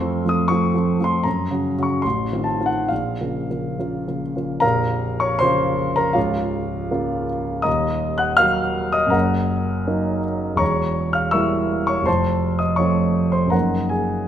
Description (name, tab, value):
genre	classical, romantic character piece for solo piano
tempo	67-84 BPM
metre	2/4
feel	rubato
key	Bb minor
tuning	A4 = 441 Hz
part	warm grand piano	solo	0.0-14.3 s	Bb0 to Gb6	-18 LUFS	equal	none
room	moderate scoring stage reverb, RT60 1.8 s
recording	none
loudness	-18 LUFS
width	side -10 dB against mid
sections	0.0-4.6 A section; 4.6-14.3 B section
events	none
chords	0.0 F; 1.3 Gb; 2.0 F7/A; 2.9 Bbm; 6.2 Bbm/Db; 7.7 Ebm; 9.1 Ebm/Gb; 10.6 Edim7; 12.1 F; 13.5 Ebm/Gb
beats	0.49 | 1.25 2.04 | 2.90 3.78 | 4.63 5.40 | 6.16 6.91 | 7.66 8.40 | 9.14 9.87 | 10.61 11.34 | 12.07 12.79 | 13.54